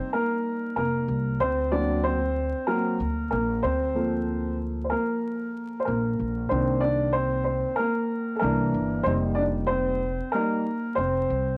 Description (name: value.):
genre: hip hop, jazz-hop.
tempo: 94 BPM.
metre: 4/4.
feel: swing 63% on 16ths.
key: unclear.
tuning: A4 = 437 Hz.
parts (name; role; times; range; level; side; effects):
warm grand piano; accompaniment; 0.0-11.6 s; Eb3 to D5; -27 LUFS; equal; none.
upright bass; bass; 0.8-11.6 s; F1 to D2; -31 LUFS; equal; none.
room: light reverb.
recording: worn, warbling old tape, cassette tape, vinyl crackle, warbly pitch drift.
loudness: -26 LUFS.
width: mono.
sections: 0.0-11.6 A section.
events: grand piano solo 0.0-11.6.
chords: 0.0 F9sus4; 1.4 Daug7; 3.6 Bbmaj9; 6.5 Cm9; 8.4 C7; 9.1 F9sus4.